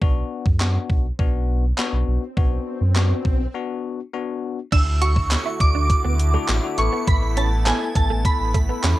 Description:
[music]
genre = dance-pop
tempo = 102 BPM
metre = 4/4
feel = straight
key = unclear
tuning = A4 = 440 Hz
[part]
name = bell-like tine electric piano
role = accompaniment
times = 0.0-9.0 s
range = B3 to A4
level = -28 LUFS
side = left 8 dB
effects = lush chorus, sidechain pumping, cassette tape
[part]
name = sub bass with octave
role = bass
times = 0.0-8.9 s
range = A1 to F#2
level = -20 LUFS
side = equal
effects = sidechain pumping
[part]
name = gated 80s digital drum machine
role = drums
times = 0.0-9.0 s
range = crash cymbal, handclaps, hi-hat, kick drum, snare drum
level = -21 LUFS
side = equal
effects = gated reverb, gated reverb snare, cassette tape
[part]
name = swell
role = sound effects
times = 1.7-3.5 s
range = none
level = -34 LUFS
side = left 1 dB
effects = none
[part]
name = shimmering bell with halo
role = melody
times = 4.7-9.0 s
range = G#5 to E6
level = -24 LUFS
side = right 2 dB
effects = ensemble chorus, tremolo, cassette tape, tape echo
[part]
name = soft supersaw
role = sustained chords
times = 4.7-9.0 s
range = D3 to F#4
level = -32 LUFS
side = equal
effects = sidechain pumping, cassette tape
[part]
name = direct-recorded clean electric guitar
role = riff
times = 4.7-8.9 s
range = A3 to F#4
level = -29 LUFS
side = right 8 dB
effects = ensemble chorus, cassette tape
[sound]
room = light reverb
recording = home recording on cassette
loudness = -18 LUFS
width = side -16 dB against mid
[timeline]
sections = 0.0-4.7 A section; 4.7-9.0 B section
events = swell 1.7-4.7; break 3.5-4.7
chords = 0.0 Bm; 4.7 Dadd9; 6.8 Asus2

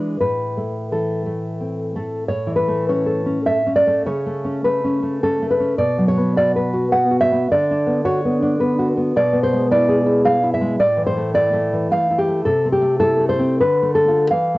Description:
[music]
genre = romantic piece for solo classical guitar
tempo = 84-110 BPM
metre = 3/4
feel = rubato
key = A major, A minor from 9.2 s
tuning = A4 = 440 Hz
[part]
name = nylon-string guitar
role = solo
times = 0.0-14.6 s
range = A2 to F#5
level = -16 LUFS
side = equal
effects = cassette tape
[sound]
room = moderate spring reverb, RT60 1.3 s, studio ambience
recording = home recording on cassette, nothing above 7.8 kHz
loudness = -16 LUFS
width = side -19 dB against mid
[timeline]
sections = 0.0-2.3 A section; 2.3-14.6 B section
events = none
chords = 0.2 Am; 2.3 A; 4.1 A/C#; 5.8 Bm; 7.5 Bm/D; 9.2 E7/B; 10.8 A5; 12.5 Am/C; 13.6 Bm7b5/D

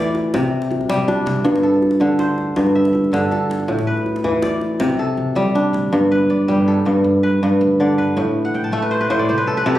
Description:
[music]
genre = west african traditional, West African string and xylophone music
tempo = 107 BPM (dotted quarters)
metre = 12/8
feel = straight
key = G major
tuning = A4 = 439 Hz
[part]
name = kora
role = arpeggios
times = 0.0-9.8 s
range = G2 to A5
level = -16 LUFS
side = equal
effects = none
[part]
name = upright bass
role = bass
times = 0.0-9.8 s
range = G1 to G2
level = -26 LUFS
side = equal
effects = none
[part]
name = djembe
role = percussion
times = 0.1-5.9 s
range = none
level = -27 LUFS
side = equal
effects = none
[sound]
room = light reverb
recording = recorded on a phone in the room, studio reverb, compression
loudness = -15 LUFS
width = side -13 dB against mid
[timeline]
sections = 0.0-5.9 A section; 5.9-9.8 B section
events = drum fill 5.0-5.9; kora fill 8.5-9.8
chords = 0.3 C5; 1.5 G5; 3.7 A5; 4.8 C5; 5.9 G; 8.2 Am13

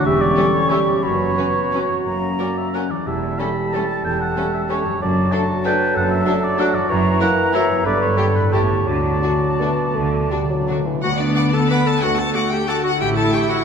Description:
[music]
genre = classical, orchestral ballroom waltz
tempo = 156-203 BPM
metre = 3/4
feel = rubato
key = D major from 3.1 s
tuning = A4 = 439 Hz
[part]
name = concert flute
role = second line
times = 0.0-10.8 s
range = A5 to C#6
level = -26 LUFS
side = left 1 dB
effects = none
[part]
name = mellow oboe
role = second line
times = 0.0-10.9 s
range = B4 to B5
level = -24 LUFS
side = right 2 dB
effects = none
[part]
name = warm clarinet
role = second line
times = 0.0-13.6 s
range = D4 to C#5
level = -25 LUFS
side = equal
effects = none
[part]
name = dark bassoon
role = accompaniment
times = 0.0-11.0 s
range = D3 to B3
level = -24 LUFS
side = right 3 dB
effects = none
[part]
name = mellow French horn section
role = sustained chords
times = 0.0-10.8 s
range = G3 to G4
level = -28 LUFS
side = left 3 dB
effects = none
[part]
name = concert harp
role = arpeggios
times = 0.0-13.6 s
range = E2 to F#5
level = -26 LUFS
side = left 6 dB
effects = none
[part]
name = rich symphonic double bass section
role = bass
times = 0.0-13.3 s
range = E1 to D2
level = -27 LUFS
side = right 2 dB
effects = none
[part]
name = rich symphonic cello section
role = bass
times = 0.1-13.3 s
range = D2 to D3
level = -26 LUFS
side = right 2 dB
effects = none
[part]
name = rich chamber violin section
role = melody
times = 0.4-13.6 s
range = F#4 to B5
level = -28 LUFS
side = left 4 dB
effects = none
[part]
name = clear symphonic violin section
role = second line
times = 0.4-13.4 s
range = C#4 to D6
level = -31 LUFS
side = left 2 dB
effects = none
[part]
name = clear symphonic viola section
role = accompaniment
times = 0.4-13.6 s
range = F#3 to F#4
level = -27 LUFS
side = right 1 dB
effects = none
[part]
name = timpani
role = percussion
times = 8.9-11.0 s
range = D3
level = -27 LUFS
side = left 3 dB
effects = none
[sound]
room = wet concert hall reverb, RT60 1.9 s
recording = minimal, uncompressed stereo recording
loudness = -16 LUFS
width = side -6 dB against mid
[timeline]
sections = 0.0-11.0 A section; 11.0-13.6 B section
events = timpani fill 8.9-11.0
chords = 0.1 C#dim/E; 1.0 F#sus4; 2.1 F#; 3.1 A7/E; 5.0 D/F#; 6.9 F#7; 7.9 G; 8.5 A7; 8.9 D; 13.0 A7

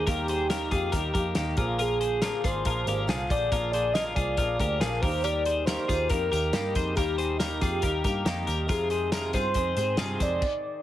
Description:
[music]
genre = jangly indie pop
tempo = 139 BPM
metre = 4/4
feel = straight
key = Eb major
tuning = A4 = 439 Hz
[part]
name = warm velvety synth lead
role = melody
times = 0.0-10.8 s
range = G4 to Eb5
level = -29 LUFS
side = equal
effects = chorus, plate reverb
[part]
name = fingerpicked swing-style acoustic guitar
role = accompaniment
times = 0.0-10.8 s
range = F2 to Ab4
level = -34 LUFS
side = right 3 dB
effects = plate reverb
[part]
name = twelve-string electric guitar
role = arpeggios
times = 0.0-10.4 s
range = Eb4 to C5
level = -31 LUFS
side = left 4 dB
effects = plate reverb
[part]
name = vintage muted picked electric bass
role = bass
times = 0.0-10.4 s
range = Ab1 to Ab2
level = -32 LUFS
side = equal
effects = none
[part]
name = loose indie drum kit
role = drums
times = 0.1-10.5 s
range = crash cymbal, hi-hat, kick drum, snare drum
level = -30 LUFS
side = equal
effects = none
[part]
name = tambourine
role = percussion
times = 5.2-10.3 s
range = none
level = -44 LUFS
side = right 7 dB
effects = none
[sound]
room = light reverb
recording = heavily compressed radio sound, multiband compression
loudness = -24 LUFS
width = side -13 dB against mid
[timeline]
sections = 0.0-10.8 A section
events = stop 10.4-10.8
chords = 0.0 Eb; 1.6 Bb7; 5.0 Eb; 8.7 Fm7

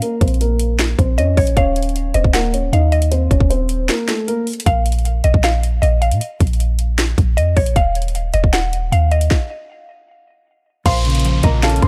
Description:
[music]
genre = hip hop, trap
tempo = 155 BPM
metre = 4/4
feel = half-time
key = Bb harmonic minor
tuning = A4 = 437 Hz
[part]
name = dark concert grand piano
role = melody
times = 0.0-4.4, 10.9-11.9 s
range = A3 to C6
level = -24 LUFS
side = equal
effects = low-pass filter, tape echo
[part]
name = trap drum kit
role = drums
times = 0.0-11.9 s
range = crash cymbal, hi-hat, kick drum, snare drum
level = -20 LUFS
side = equal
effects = none
[part]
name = clean 808-style bass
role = bass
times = 0.2-11.9 s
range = Eb1 to Bb2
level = -19 LUFS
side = equal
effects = none
[part]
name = mallet-like synth pluck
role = second line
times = 1.2-11.9 s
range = Db5 to Gb5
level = -24 LUFS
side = equal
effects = chorus, tape echo
[part]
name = mellow electric guitar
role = accompaniment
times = 10.9-11.9 s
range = Bb2 to Db4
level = -22 LUFS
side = equal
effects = lush chorus
[part]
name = warbly tape-like pad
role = sustained chords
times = 11.5-11.9 s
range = Bb3 to F4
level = -38 LUFS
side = equal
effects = none
[part]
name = downlifter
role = sound effects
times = 10.9-11.9 s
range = none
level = -28 LUFS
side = equal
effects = none
[sound]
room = digital ambience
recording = dry, gritty hardware recording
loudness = -16 LUFS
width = mono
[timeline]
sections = 0.0-10.9 A section; 10.9-11.9 B section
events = filter sweep on grand piano 0.0-4.7; break 3.9-4.7; stop 9.3-10.9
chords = 0.0 Bbm; 1.6 Eb5; 4.7 Bb5; 7.8 N.C.; 10.9 Bbm

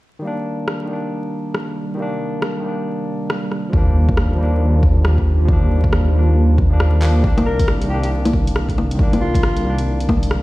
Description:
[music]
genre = future garage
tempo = 137 BPM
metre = 4/4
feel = swing 61% on 16ths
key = C minor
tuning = A4 = 438 Hz
[part]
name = barky tine electric piano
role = accompaniment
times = 0.2-10.4 s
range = Eb3 to D4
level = -23 LUFS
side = left 1 dB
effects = sidechain pumping, tape echo
[part]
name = warbly tape-like pad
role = sustained chords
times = 1.5-7.2 s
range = C3 to G4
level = -30 LUFS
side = right 3 dB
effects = chorus, built-in reverb, phaser, sidechain pumping
[part]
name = deep house drum kit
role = drums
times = 0.7-10.4 s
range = bongos, handclaps, hi-hat, rim click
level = -22 LUFS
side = left 1 dB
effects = vintage 12-bit sampler grit
[part]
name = swelling detuned saw bass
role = bass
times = 3.7-10.4 s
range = C2 to Eb2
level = -16 LUFS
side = equal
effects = sidechain pumping
[part]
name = electronic kick drum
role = drums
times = 3.7-10.2 s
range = none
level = -18 LUFS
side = equal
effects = vintage 12-bit sampler grit
[part]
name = warm alto saxophone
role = melody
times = 7.5-9.8 s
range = F4 to Bb4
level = -25 LUFS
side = left 1 dB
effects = analog delay
[sound]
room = digital ambience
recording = played on a big sound system in a bare room, stone room reverb, vinyl crackle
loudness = -15 LUFS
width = side -18 dB against mid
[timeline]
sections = 0.2-7.2 A section; 7.2-10.4 B section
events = fade-in on ambient pad 0.2-7.2; drum fill 7.0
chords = 0.2 Cm7; 3.7 Ebmaj7; 7.2 Cm7

